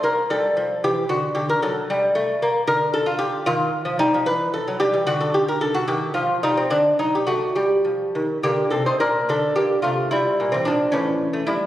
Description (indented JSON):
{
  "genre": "classical, baroque-style dance for lute",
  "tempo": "74 BPM (dotted quarters)",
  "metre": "6/8",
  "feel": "rubato",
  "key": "G minor",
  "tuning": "A4 = 443 Hz",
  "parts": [
    { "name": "lute", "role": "solo", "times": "0.0-11.7 s", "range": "A2 to C5", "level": "-18 LUFS", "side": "equal", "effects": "none" }
  ],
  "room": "moderate concert hall reverb, RT60 1.9 s",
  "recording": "recorded on a phone in the room, studio reverb, compression",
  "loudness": "-18 LUFS",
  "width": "side -13 dB against mid",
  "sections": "0.0-9.3 A section; 9.3-11.7 A section",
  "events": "none",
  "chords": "0.0 Gm; 1.1 D; 1.9 Gm; 2.7 N.C.; 3.5 Eb; 4.3 Emadd11; 5.1 N.C.; 5.9 Eb; 6.7 D; 7.6 Gm; 9.3 Dm; 10.9 A7"
}